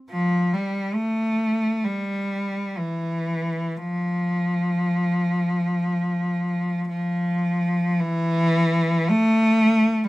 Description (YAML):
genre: classical, free, expressive piece for unaccompanied cello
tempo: free time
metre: none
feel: none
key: F major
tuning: A4 = 444 Hz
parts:
  - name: rich cello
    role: solo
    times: 0.1-10.1 s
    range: E3 to A3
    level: -20 LUFS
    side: equal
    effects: none
room: light reverb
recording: minimal, uncompressed stereo recording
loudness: -20 LUFS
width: side -18 dB against mid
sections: 0.0-8.0 A section; 8.0-10.1 B section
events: none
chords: none